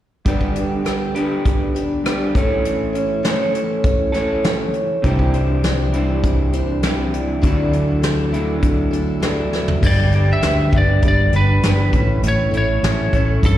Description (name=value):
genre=folk rock and heartland rock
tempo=100 BPM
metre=4/4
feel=straight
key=G major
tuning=A4 = 440 Hz
part: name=electric guitar through a small old amp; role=riff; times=0.2-13.6 s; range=G2 to A4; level=-22 LUFS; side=right 1 dB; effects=slapback echo
part: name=picked twelve-string acoustic guitar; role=accompaniment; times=0.3-13.6 s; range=A2 to C#5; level=-24 LUFS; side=left 1 dB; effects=plate reverb, slapback echo
part: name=soft brush drum kit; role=drums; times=0.3-13.6 s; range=crash cymbal, hi-hat, kick drum, rim click, snare drum, toms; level=-20 LUFS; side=equal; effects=none
part: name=fingered electric bass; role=bass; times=5.0-13.6 s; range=G1 to G2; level=-18 LUFS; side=equal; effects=none
part: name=lightly driven lead guitar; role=melody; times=9.9-13.6 s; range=A4 to E5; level=-21 LUFS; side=equal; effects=plate reverb, slapback echo
room=light reverb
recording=live gig heard through the venue's PA, recital hall reverb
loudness=-15 LUFS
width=side -12 dB against mid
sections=0.3-9.8 A section; 9.8-13.6 B section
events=drum fill 9.5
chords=0.3 G; 2.4 A; 5.0 Cadd9; 7.4 Dadd9; 9.8 G; 11.9 A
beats=| 0.26 0.86 1.45 2.05 | 2.65 3.25 3.85 4.45 | 5.05 5.65 6.25 6.84 | 7.44 8.04 8.64 9.24 | 9.84 10.44 11.04 11.64 | 12.24 12.84 13.44